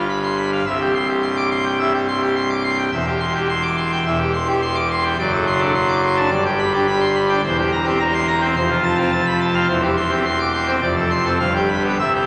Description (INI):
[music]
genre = classical, organ toccata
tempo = 106 BPM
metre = 4/4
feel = straight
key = C major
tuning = A4 = 440 Hz
[part]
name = pipe organ, full organ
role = solo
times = 0.0-12.3 s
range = C1 to D6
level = -19 LUFS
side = equal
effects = none
[sound]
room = wet church reverb, RT60 3.4 s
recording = none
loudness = -19 LUFS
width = mono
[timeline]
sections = 0.0-12.3 A section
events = none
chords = 0.0 G; 0.7 C; 2.9 C/E; 5.2 D7/F#; 6.3 G; 7.4 C7/E; 8.6 F; 9.7 C/E; 10.8 Dm7/F; 11.4 G7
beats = 0.10 | 0.66 1.23 1.79 2.36 | 2.93 3.49 4.06 4.62 | 5.19 5.75 6.32 6.88 | 7.44 8.00 8.57 9.13 | 9.70 10.26 10.83 11.40 | 11.99